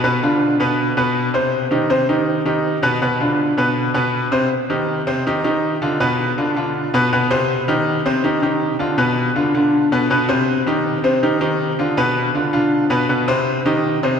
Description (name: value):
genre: latin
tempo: 161 BPM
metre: 4/4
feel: straight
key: unclear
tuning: A4 = 440 Hz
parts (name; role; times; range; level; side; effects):
- bright baby grand piano; solo; 0.0-14.2 s; B2 to C5; -16 LUFS; equal; none
room: wet cathedral reverb, RT60 4.3 s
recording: recorded in a church or concert hall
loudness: -16 LUFS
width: side -7 dB against mid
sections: 0.0-4.5 A section; 4.5-14.2 B section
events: none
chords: 0.0 Bdim; 1.5 Cm; 3.0 Bdim; 4.5 Cm; 6.0 Bdim; 7.5 Cm; 9.0 Bdim; 10.5 Cm; 12.0 Bdim; 13.5 Cm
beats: | 0.04 0.41 0.78 1.16 | 1.53 1.90 2.27 2.65 | 3.02 3.39 3.76 4.14 | 4.51 4.88 5.25 5.63 | 6.00 6.37 6.75 7.12 | 7.49 7.86 8.24 8.61 | 8.98 9.36 9.73 10.10 | 10.48 10.85 11.22 11.60 | 11.97 12.35 12.72 13.09 | 13.47 13.84